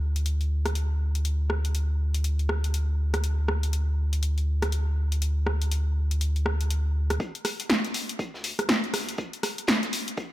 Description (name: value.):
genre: deep house.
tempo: 121 BPM.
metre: 4/4.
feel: swing 60% on 16ths.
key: unclear.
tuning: A4 = 440 Hz.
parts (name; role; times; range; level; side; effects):
round analog bass; bass; 0.0-9.9 s; D1 to D2; -25 LUFS; equal; sidechain pumping, high-pass filter.
punchy analog drum machine; drums; 0.2-10.2 s; hi-hat, rim click, snare drum; -28 LUFS; equal; overdrive.
crunchy breakbeat drum kit; drums; 7.2-10.3 s; hi-hat, snare drum; -40 LUFS; equal; none.
electronic kick drum; drums; 7.2-10.3 s; none; -34 LUFS; equal; high-pass filter on kick, high-pass filter on room.
room: small room reverb.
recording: none.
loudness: -24 LUFS.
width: side -15 dB against mid.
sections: 0.0-7.2 A section; 7.2-10.3 B section.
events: build-up 7.2-10.3.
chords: none.